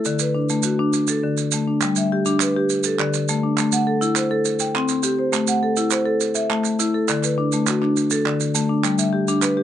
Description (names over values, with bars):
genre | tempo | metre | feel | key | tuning
southern african traditional, mbira-style interlocking cycle | 137 BPM (dotted quarters) | 12/8 | straight | unclear | A4 = 440 Hz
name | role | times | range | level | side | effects
marimba with medium hard mallets | arpeggios | 0.0-9.6 s | D3 to G5 | -19 LUFS | left 1 dB | none
maracas | percussion | 0.0-9.6 s | none | -26 LUFS | right 11 dB | none
group handclap | percussion | 1.8-9.6 s | none | -26 LUFS | right 10 dB | none
room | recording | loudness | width
light reverb | nothing above 10.3 kHz | -18 LUFS | side -10 dB against mid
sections
0.0-1.8 A section; 1.8-9.6 B section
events
none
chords
0.0 D; 1.8 G; 2.7 D5; 3.6 Am; 4.5 C5; 5.3 Am; 7.1 D; 8.8 G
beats
| 0.05 0.49 0.93 1.37 | 1.81 2.25 2.69 3.13 | 3.57 4.01 4.45 4.89 | 5.33 5.77 6.21 6.65 | 7.08 7.52 7.96 8.40 | 8.84 9.28